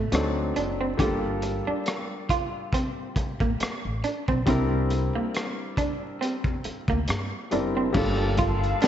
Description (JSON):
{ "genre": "R&B, neo-soul", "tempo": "69 BPM", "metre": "4/4", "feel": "swing 56% on 16ths", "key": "G minor", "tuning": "A4 = 435 Hz", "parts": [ { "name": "electric guitar through a small old amp", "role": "second line", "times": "0.0-8.9 s", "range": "Bb3 to G4", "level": "-30 LUFS", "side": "right 3 dB", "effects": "wide subtle chorus" }, { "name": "warm baby grand piano", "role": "accompaniment", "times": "0.0-8.9 s", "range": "F#3 to Bb4", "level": "-28 LUFS", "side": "left 2 dB", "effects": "none" }, { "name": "upright bass", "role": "bass", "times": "0.0-8.7 s", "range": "F#1 to G2", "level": "-29 LUFS", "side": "equal", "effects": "none" }, { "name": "crunchy breakbeat drum kit", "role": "drums", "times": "0.1-8.9 s", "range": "crash cymbal, hi-hat, kick drum, rim click, snare drum", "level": "-28 LUFS", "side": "equal", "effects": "none" }, { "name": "hollow soft pad", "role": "sustained chords", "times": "7.9-8.9 s", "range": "F5 to A5", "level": "-32 LUFS", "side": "left 3 dB", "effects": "ensemble chorus" }, { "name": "congas", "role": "percussion", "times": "7.9-8.9 s", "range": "none", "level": "-37 LUFS", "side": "left 1 dB", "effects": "none" } ], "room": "moderate lush hall reverb, RT60 2.2 s", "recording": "dreamy mix soaked in reverb, vinyl crackle, nothing above 7.8 kHz", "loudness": "-24 LUFS", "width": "side -10 dB against mid", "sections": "0.0-7.9 A section", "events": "none", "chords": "0.1 D7b9; 1.0 Gm9; 4.5 C9; 7.9 Gm9", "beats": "0.12 | 0.99 1.86 2.73 3.60 | 4.47 5.34 6.21 7.08 | 7.95 8.82" }